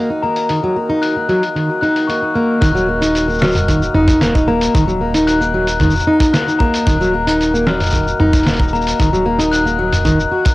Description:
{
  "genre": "folktronica",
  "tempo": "113 BPM",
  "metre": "4/4",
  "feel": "straight",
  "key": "unclear",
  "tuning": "A4 = 440 Hz",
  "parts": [
    { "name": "pedal harmonium", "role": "sustained chords", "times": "0.0-10.5 s", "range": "D#3 to D#5", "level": "-24 LUFS", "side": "right 1 dB", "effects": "cassette tape, plate reverb" },
    { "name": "fingerpicked plugged-in steel-string acoustic guitar", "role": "arpeggios", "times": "0.0-10.4 s", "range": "D#3 to F#4", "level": "-16 LUFS", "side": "equal", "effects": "low-pass filter, cassette tape, analog delay, plate reverb" },
    { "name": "glockenspiel with rubber mallets", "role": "second line", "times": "0.2-9.8 s", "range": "A#5 to F#6", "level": "-20 LUFS", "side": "left 5 dB", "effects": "cassette tape, analog delay" },
    { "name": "lo-fi sampler-style drum kit", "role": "drums", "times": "0.4-10.5 s", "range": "hi-hat, shaker, snare drum, toms", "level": "-20 LUFS", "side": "right 1 dB", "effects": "cassette tape" },
    { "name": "warm sub bass", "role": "bass", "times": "2.6-10.3 s", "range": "D#1 to F#1", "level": "-23 LUFS", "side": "equal", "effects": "none" },
    { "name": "kick drum", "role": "drums", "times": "2.6-10.5 s", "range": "none", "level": "-16 LUFS", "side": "equal", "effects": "cassette tape" }
  ],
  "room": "moderate booth ambience, RT60 0.2 s",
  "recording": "home recording on cassette",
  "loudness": "-12 LUFS",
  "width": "side -18 dB against mid",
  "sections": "0.0-2.6 A section; 2.6-10.5 B section",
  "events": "none",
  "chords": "0.0 D#m",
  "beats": "| 0.50 1.03 1.56 2.09 | 2.62 3.15 3.68 4.21 | 4.74 5.27 5.80 6.34 | 6.87 7.40 7.93 8.46 | 8.99 9.52 10.05"
}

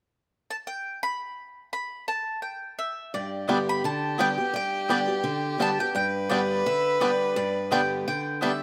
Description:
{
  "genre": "bluegrass",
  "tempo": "170 BPM",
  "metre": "4/4",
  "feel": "swing 55% on 8ths",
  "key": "G major",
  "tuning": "A4 = 440 Hz",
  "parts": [
    { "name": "mandolin", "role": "melody", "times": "0.5-8.6 s", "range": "D5 to B5", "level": "-32 LUFS", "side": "equal", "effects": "none" },
    { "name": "dark fiddle", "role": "second line", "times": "3.1-8.6 s", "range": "G4 to B4", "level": "-30 LUFS", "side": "equal", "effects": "none" },
    { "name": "picked steel-string acoustic guitar", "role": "accompaniment", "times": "3.1-8.6 s", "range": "G2 to G4", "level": "-32 LUFS", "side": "equal", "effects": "none" },
    { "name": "bluegrass banjo", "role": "arpeggios", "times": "3.5-8.5 s", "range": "G3 to D4", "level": "-32 LUFS", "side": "equal", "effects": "none" },
    { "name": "mandolin", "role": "stabs", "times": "3.5-8.5 s", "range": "B3 to G5", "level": "-35 LUFS", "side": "equal", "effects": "none" }
  ],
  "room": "moderate lush hall reverb, RT60 2.2 s",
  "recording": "rough home demo mix",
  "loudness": "-27 LUFS",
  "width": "mono",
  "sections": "0.3-3.1 A section; 3.1-8.6 B section",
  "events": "none",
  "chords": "0.3 N.C.; 3.1 G",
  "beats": "| 0.32 0.67 1.02 1.37 | 1.72 2.08 2.43 2.78 | 3.13 3.48 3.84 4.19 | 4.54 4.89 5.25 5.60 | 5.95 6.30 6.66 7.01 | 7.36 7.71 8.07 8.42"
}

